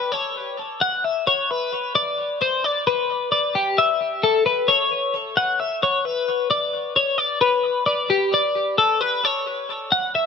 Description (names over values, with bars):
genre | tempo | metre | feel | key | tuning
rock | 132 BPM | 5/4 | straight | unclear | A4 = 440 Hz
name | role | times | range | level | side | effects
twelve-string electric guitar | solo | 0.0-10.3 s | G4 to F#5 | -18 LUFS | left 3 dB | wide subtle chorus, tape echo
room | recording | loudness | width
moderate echo chamber reverb, RT60 1.6 s, digital ambience | echo-heavy mix | -18 LUFS | side -6 dB against mid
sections
0.0-10.3 A section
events
none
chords
none